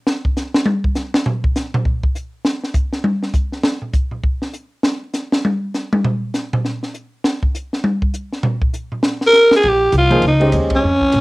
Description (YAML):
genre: modal jazz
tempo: 200 BPM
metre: 4/4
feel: swing 61% on 8ths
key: Bb dorian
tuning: A4 = 440 Hz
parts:
  - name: compact cocktail drum kit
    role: drums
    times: 0.1-11.2 s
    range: hi-hat, kick drum, ride cymbal, snare drum, toms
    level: -18 LUFS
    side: equal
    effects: cassette tape
  - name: growling alto saxophone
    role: melody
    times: 9.3-11.2 s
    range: Db4 to Bb4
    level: -12 LUFS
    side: equal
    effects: cassette tape
  - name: upright bass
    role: bass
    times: 9.6-11.2 s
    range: Bb1 to Bb2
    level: -17 LUFS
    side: equal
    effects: none
  - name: warm concert grand piano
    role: accompaniment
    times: 10.1-10.8 s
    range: F3 to Eb5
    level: -18 LUFS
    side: equal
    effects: none
room: moderate studio reverb, RT60 0.6 s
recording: home recording on cassette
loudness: -15 LUFS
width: side -22 dB against mid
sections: 0.0-9.6 A section; 9.6-11.2 B section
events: drum solo 0.0-9.6; band accent 10.7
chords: 0.0 N.C.; 9.6 Bbm9